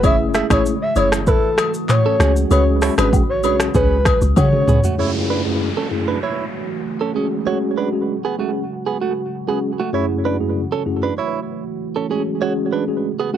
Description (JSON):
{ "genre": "afrobeats", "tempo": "97 BPM", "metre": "4/4", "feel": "straight", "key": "F# minor", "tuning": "A4 = 441 Hz", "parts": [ { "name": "breathy flute-like synth lead", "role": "melody", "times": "0.0-4.8 s", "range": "A4 to E5", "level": "-20 LUFS", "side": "left 1 dB", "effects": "chorus, cassette tape, analog delay" }, { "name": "mellow tine electric piano", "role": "accompaniment", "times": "0.0-13.4 s", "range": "F#2 to G#4", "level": "-21 LUFS", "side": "left 1 dB", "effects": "medium stereo tremolo, cassette tape" }, { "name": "deep dark ambient pad", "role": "sustained chords", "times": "0.0-13.4 s", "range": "C#3 to F#4", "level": "-27 LUFS", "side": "right 1 dB", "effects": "chorus, built-in reverb, cassette tape" }, { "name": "direct-recorded clean electric guitar", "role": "riff", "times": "0.0-13.4 s", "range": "A3 to E5", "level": "-24 LUFS", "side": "right 8 dB", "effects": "cassette tape, analog delay" }, { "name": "deep log drum bass", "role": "bass", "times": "0.0-4.8 s", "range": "F#1 to C#3", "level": "-18 LUFS", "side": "equal", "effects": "none" }, { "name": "afro-pop drum kit", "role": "drums", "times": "0.0-5.0 s", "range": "finger snaps, handclaps, hi-hat, kick drum, rim click, shaker, toms", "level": "-18 LUFS", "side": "equal", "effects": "none" }, { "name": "agogo bells and woodblock", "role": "percussion", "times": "0.0-4.5 s", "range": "none", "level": "-26 LUFS", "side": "left 13 dB", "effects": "none" }, { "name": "downlifter", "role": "sound effects", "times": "5.0-9.9 s", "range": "none", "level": "-30 LUFS", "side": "equal", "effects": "none" } ], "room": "moderate small room ambience, RT60 0.5 s", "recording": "home recording on cassette", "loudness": "-16 LUFS", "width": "side -10 dB against mid", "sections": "0.0-5.0 A section; 5.0-13.4 B section", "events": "drum fill 4.4-5.0", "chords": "0.0 F#m7; 2.2 C#sus4; 5.0 F#m7; 7.1 C#sus4; 9.9 F#m7; 12.1 C#sus4" }